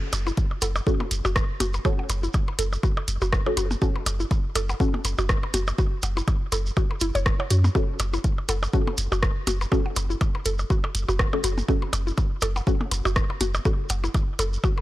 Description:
minimal techno; 122 BPM; 4/4; swing 56% on 16ths; F# minor; A4 = 438 Hz
punchy sub bass; bass; 0.1-14.6 s; F#1 to F#2; -25 LUFS; equal; sidechain pumping
garage drum kit; drums; 0.1-14.5 s; hi-hat, rim click; -28 LUFS; equal
percussion blips; percussion; 0.1-14.8 s; -32 LUFS; left 1 dB; analog delay
shekere; percussion; 0.1-14.7 s; -36 LUFS; right 4 dB
mallet-like synth pluck; riff; 0.3-14.7 s; E4 to C#5; -32 LUFS; equal; chorus, sidechain pumping, analog delay
electronic kick drum; drums; 0.4-14.7 s; -23 LUFS; equal
filtered dub chord stab; stabs; 0.9-13.7 s; C#4 to A4; -30 LUFS; left 2 dB; phaser, ensemble chorus, analog delay
little or no reverb; dry, gritty hardware recording, transformer saturation; -22 LUFS; side -16 dB against mid
0.0-14.8 A section
0.0 F#m

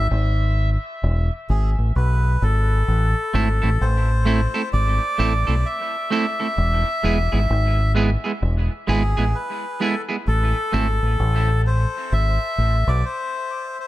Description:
dub reggae; 65 BPM; 4/4; swing 62% on 16ths; A harmonic minor; A4 = 440 Hz
melodica; melody; 0.0-13.9 s; G#4 to E5; -25 LUFS; left 1 dB; dub echo
deep dub fingered electric bass; bass; 0.0-13.0 s; E1 to B1; -18 LUFS; equal
semi-hollow electric guitar; accompaniment; 3.3-10.9 s; G#3 to A4; -25 LUFS; right 4 dB; dub echo
light reverb, small room ambience; echo-heavy mix; -18 LUFS; side -16 dB against mid
0.0-13.9 A section
break 0.0-2.9
0.0 E (rootless); 2.9 Am; 6.6 E; 10.3 Am

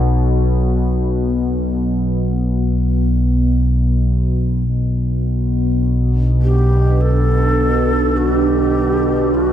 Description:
dark ambient drone; free time; B minor; A4 = 440 Hz
analog drone; drone; 0.0-9.5 s; B1 to B2; -15 LUFS; equal; chorus, phaser
deep dark ambient pad; sustained chords; 6.2-9.5 s; D4 to F#5; -21 LUFS; right 5 dB; chorus, built-in reverb
breathy mellow shakuhachi; melody; 6.4-9.5 s; F#4 to A4; -19 LUFS; equal; ping-pong delay
moderate huge ambient reverb, RT60 7.5 s; dark, warm production; -14 LUFS; side -10 dB against mid
0.0-4.7 A section; 4.7-9.5 B section
0.0 N.C.; 4.7 Bm

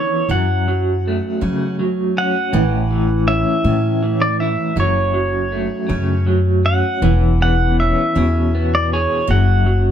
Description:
acoustic folk-pop ballad; 54 BPM (dotted quarters); 6/8; straight; F# minor; A4 = 440 Hz
pedal steel guitar; melody; 0.0-9.9 s; C#5 to F#5; -21 LUFS; right 1 dB
electric guitar through a small old amp; accompaniment; 0.0-9.9 s; F#2 to G#4; -21 LUFS; equal; tremolo
picked steel-string acoustic guitar; arpeggios; 0.0-9.9 s; E3 to C#4; -24 LUFS; right 2 dB
upright bass; bass; 0.0-9.9 s; E1 to F#3; -18 LUFS; equal
light reverb; close, detailed microphones; -15 LUFS; side -9 dB against mid
0.0-9.9 A section
0.3 F#m; 2.5 A; 4.8 F#m; 7.0 E6; 9.3 F#5

